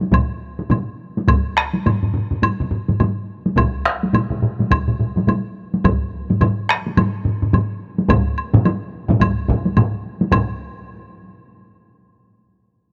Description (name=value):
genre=japanese traditional, taiko drum ensemble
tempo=106 BPM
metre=4/4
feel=swing 60% on 16ths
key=none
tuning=none
part: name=taiko ensemble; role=percussion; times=0.0-10.6 s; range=none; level=-24 LUFS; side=equal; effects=none
part: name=taiko ensemble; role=percussion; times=0.1-10.8 s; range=none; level=-22 LUFS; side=equal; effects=none
part: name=taiko ensemble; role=percussion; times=0.1-10.8 s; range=none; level=-22 LUFS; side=equal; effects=none
part: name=taiko ensemble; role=percussion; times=0.1-10.6 s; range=none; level=-25 LUFS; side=equal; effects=none
part: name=woodblock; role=percussion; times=0.1-10.6 s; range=none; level=-26 LUFS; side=equal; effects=none
room=light reverb, small room ambience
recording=dry, close 1970s-style studio recording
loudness=-19 LUFS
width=mono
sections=0.0-10.3 A section; 10.3-12.5 B section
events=speeding up 0.0-12.5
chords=none